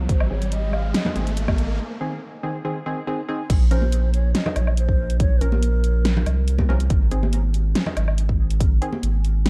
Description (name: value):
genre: deep dubstep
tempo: 141 BPM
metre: 4/4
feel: half-time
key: unclear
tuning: A4 = 440 Hz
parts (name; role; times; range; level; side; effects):
- saturated sub bass; bass; 0.0-9.5 s; Ab1 to C2; -23 LUFS; equal; none
- riser; sound effects; 0.0-1.8 s; none; -35 LUFS; equal; none
- breathy mellow low ney; melody; 0.1-1.1, 3.7-6.7 s; Bb4 to F5; -36 LUFS; equal; dub echo
- dubstep drum kit; drums; 0.1-9.5 s; crash cymbal, hi-hat, snare drum, woodblock; -29 LUFS; equal; none
- electronic kick drum; drums; 0.1-8.7 s; none; -22 LUFS; equal; none
- filtered dub chord stab; stabs; 0.3-9.0 s; Eb3 to Bb4; -33 LUFS; equal; chorus, dub echo
- congas; percussion; 1.1-9.0 s; none; -32 LUFS; equal; dub echo
room: little or no reverb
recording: dark, warm production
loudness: -21 LUFS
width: mono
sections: 0.0-3.5 A section; 3.5-9.5 B section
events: build-up 0.0-3.5; riser 0.0-1.8; filter sweep on synth stab 0.0-3.5; break 1.8-3.5; drop 3.5-9.5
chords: 0.1 Ab; 3.5 N.C.